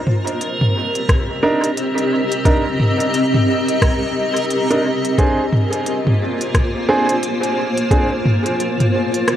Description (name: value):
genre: ambient dub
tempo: 88 BPM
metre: 4/4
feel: swing 60% on 16ths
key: C minor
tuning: A4 = 444 Hz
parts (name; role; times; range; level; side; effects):
- granular cloud pad; sustained chords; 0.0-9.4 s; Bb3 to Eb5; -19 LUFS; left 1 dB; built-in reverb
- backwards swelling texture; texture; 0.0-9.4 s; Bb4; -29 LUFS; right 2 dB; built-in reverb
- organic electronic drum kit; drums; 0.1-9.4 s; hi-hat, rim click, toms; -20 LUFS; equal; dub echo
- electronic kick drum; drums; 1.1-8.1 s; none; -16 LUFS; equal; none
- warm upright piano; stabs; 1.4-8.1 s; C4 to Bb4; -21 LUFS; right 2 dB; dub echo
room: light reverb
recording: vinyl crackle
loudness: -15 LUFS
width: side -11 dB against mid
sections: 0.0-9.4 A section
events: none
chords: 0.0 Cm7; 5.2 Bb7